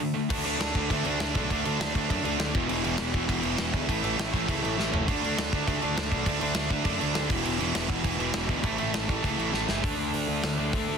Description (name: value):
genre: punk rock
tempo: 202 BPM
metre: 4/4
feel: straight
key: unclear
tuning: A4 = 440 Hz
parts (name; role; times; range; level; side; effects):
- distorted electric guitar; riff; 0.0-11.0 s; E2 to D4; -31 LUFS; left 13 dB; distortion
- distorted electric guitar; riff; 0.0-11.0 s; E2 to D4; -30 LUFS; right 15 dB; overdrive
- fuzz picked electric bass; bass; 0.3-11.0 s; E1 to F#2; -33 LUFS; equal; overdrive
- big rock drum kit; drums; 0.3-10.8 s; crash cymbal, hi-hat, kick drum, snare drum, toms; -30 LUFS; equal; soft clipping on kick, soft clipping on snare
room: little or no reverb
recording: dense, heavily limited modern master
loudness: -25 LUFS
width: side -6 dB against mid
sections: 0.3-9.8 A section; 9.8-11.0 B section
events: break 0.0; drum fill 4.8, 9.5; half time 9.8-11.0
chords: 0.3 D5; 2.5 E5; 3.9 A5; 5.1 D5; 7.3 E5; 8.6 A5; 9.8 D5